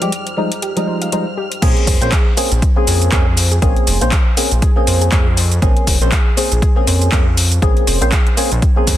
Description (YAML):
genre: deep house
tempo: 120 BPM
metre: 4/4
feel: swing 57% on 16ths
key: Bb minor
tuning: A4 = 439 Hz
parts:
  - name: dark analog pad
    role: sustained chords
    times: 0.0-1.6 s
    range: F3 to C5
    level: -46 LUFS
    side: right 1 dB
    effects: none
  - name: percussive organ stab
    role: stabs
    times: 0.0-9.0 s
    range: F3 to C5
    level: -20 LUFS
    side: equal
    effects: wide subtle chorus, tape echo
  - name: deep house drum kit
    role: drums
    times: 0.0-9.0 s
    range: crash cymbal, handclaps, hi-hat, shaker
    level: -19 LUFS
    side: left 1 dB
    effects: overdrive
  - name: string machine, violins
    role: texture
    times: 0.0-1.6 s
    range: F6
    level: -29 LUFS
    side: right 1 dB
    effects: ensemble chorus, sidechain pumping
  - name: warbly tape-like pad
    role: texture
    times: 0.0-1.6 s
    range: F4 to G5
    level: -42 LUFS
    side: right 2 dB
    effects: none
  - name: warbly dusty pluck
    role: arpeggios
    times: 0.6-8.5 s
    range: G4 to F5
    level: -27 LUFS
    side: equal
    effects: chorus, sidechain pumping, digital delay
  - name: smooth synth bass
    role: bass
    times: 1.6-9.0 s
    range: F1 to F2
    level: -16 LUFS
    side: equal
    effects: sidechain pumping
  - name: electronic kick drum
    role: drums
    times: 1.6-9.0 s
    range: none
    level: -14 LUFS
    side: equal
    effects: overdrive
room: light reverb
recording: dense, heavily limited modern master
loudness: -12 LUFS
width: side -13 dB against mid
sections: 0.0-1.6 A section; 1.6-9.0 B section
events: filter sweep on synth stab 0.0-1.6; drop 1.6-9.0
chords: 0.0 Fm9; 1.6 Bbm9